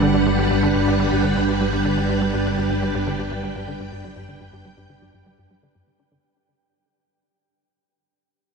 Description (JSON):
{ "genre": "ambient, sequencer-driven space music", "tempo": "123 BPM", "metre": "4/4", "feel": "straight", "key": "G major", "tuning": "A4 = 440 Hz", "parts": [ { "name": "string machine, full ensemble", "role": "sustained chords", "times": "0.0-6.2 s", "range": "G3 to G5", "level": "-21 LUFS", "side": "right 2 dB", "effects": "ensemble chorus" }, { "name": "resonant blip pluck", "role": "riff", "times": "0.0-6.2 s", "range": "G2 to D4", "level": "-24 LUFS", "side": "left 1 dB", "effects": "chorus, cassette tape, ping-pong delay" }, { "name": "round analog bass", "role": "bass", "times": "0.0-6.2 s", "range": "G1", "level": "-31 LUFS", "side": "equal", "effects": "none" }, { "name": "wind-like tuned noise texture", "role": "texture", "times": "0.0-6.2 s", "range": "G4", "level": "-32 LUFS", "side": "right 6 dB", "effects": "built-in reverb" } ], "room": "wet huge ambient reverb, RT60 7.8 s", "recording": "none", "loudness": "-18 LUFS", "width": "side -4 dB against mid", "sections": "0.0-6.2 A section", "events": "fade-out on analog synth bass 0.0-6.2; fade-out 0.0-6.2; filter sweep on synth arpeggio sound 0.0-6.2", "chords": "0.0 Gmaj7" }